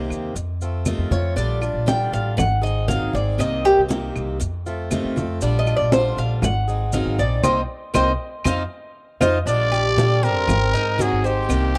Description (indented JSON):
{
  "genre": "latin, Cuban son and guajira",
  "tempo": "118 BPM",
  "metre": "4/4",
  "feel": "straight",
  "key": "Bb major",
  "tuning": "A4 = 440 Hz",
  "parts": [
    { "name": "picked swing-style acoustic guitar", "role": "accompaniment", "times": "0.0-11.8 s", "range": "C3 to Ab4", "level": "-29 LUFS", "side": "equal", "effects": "none" },
    { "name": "upright bass", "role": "bass", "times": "0.0-11.8 s", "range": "Ab1 to Bb2", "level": "-25 LUFS", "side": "equal", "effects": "none" },
    { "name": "claves", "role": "percussion", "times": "0.1-11.8 s", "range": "none", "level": "-37 LUFS", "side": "equal", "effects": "none" },
    { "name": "congas", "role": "percussion", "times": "0.1-11.8 s", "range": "none", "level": "-27 LUFS", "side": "equal", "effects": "none" },
    { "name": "maracas", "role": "percussion", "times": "0.1-11.8 s", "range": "none", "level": "-38 LUFS", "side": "equal", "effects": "none" },
    { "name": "Cuban tres", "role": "arpeggios", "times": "1.1-11.8 s", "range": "C4 to G5", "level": "-24 LUFS", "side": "equal", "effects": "none" },
    { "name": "growling trumpet", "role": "melody", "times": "9.5-11.8 s", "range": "G4 to D5", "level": "-24 LUFS", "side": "equal", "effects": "none" }
  ],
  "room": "moderate spring reverb, RT60 2.1 s",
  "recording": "dark, warm production",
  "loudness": "-21 LUFS",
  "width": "mono",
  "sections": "0.0-9.5 A section; 9.5-11.8 B section",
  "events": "Cuban tres solo 0.0-9.5; band accent 7.4-9.5",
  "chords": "0.4 F7; 1.4 Bb6; 2.4 Ab7; 3.4 Cm7; 4.4 F7; 5.4 Bb6; 6.4 Ab7; 7.4 Cm7; 8.5 F5; 9.5 Bb6; 10.5 Ab7",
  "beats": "0.36 0.86 | 1.37 1.88 2.38 2.89 | 3.39 3.90 4.41 4.91 | 5.42 5.93 6.43 6.94 | 7.45 7.95 8.46 8.96 | 9.47 9.98 10.48 10.99 | 11.50"
}